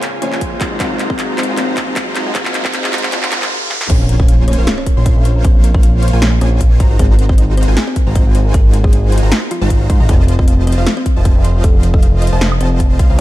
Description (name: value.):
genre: future bass.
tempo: 155 BPM.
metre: 4/4.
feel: swing 55% on 16ths, half-time.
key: Bb minor.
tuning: A4 = 436 Hz.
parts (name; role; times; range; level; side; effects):
felt-muted upright piano; accompaniment; 0.0-3.9 s; C3 to F5; -27 LUFS; left 3 dB; sidechain pumping, tape echo.
clear symphonic string section; sustained chords; 0.0-3.5 s; Gb3 to Bb5; -31 LUFS; left 2 dB; none.
supersaw chords; riff; 0.0-13.2 s; F3 to C6; -22 LUFS; equal; sidechain pumping, low-pass filter.
fat analog bass; bass; 0.0-13.2 s; F1 to Ab2; -14 LUFS; equal; sidechain pumping, high-pass filter.
big-room dance drum kit; drums; 0.0-13.2 s; crash cymbal, handclaps, hi-hat, snare drum, woodblock; -20 LUFS; equal; high-pass filter on snare, studio reverb, high-pass filter on hats, high-pass filter on cymbals, high-pass filter on perc.
riser and impact; sound effects; 0.1-5.4 s; none; -24 LUFS; right 1 dB; none.
buzzing kalimba; melody; 0.2-13.2 s; F3 to Db5; -24 LUFS; left 1 dB; sidechain pumping, low-pass filter, tape echo.
electronic kick drum; drums; 0.4-13.2 s; none; -12 LUFS; equal; studio reverb.
thumb-piano-like synth pluck; arpeggios; 3.9-13.2 s; Ab4 to C6; -30 LUFS; left 4 dB; chorus, sidechain pumping, tape echo.
wide unison pluck; arpeggios; 3.9-13.2 s; F5 to C6; -32 LUFS; right 1 dB; sidechain pumping, tape echo.
room: digital ambience.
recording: dark, warm production, high-pass filter.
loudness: -11 LUFS.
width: side -16 dB against mid.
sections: 0.0-3.9 A section; 3.9-13.2 B section.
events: build-up 0.0-3.9; drum fill 0.0-3.5, 3.7; filter sweep on supersaw synth 0.0-3.9; filter sweep on kalimba 0.0-3.9; filter sweep 0.0-3.9; riser 0.1-3.9; drop 3.9-13.2; impact 3.9-5.4.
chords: 0.0 Bbm7; 0.6 Ab13; 3.9 Bbm7; 6.8 Ab13; 10.1 F7.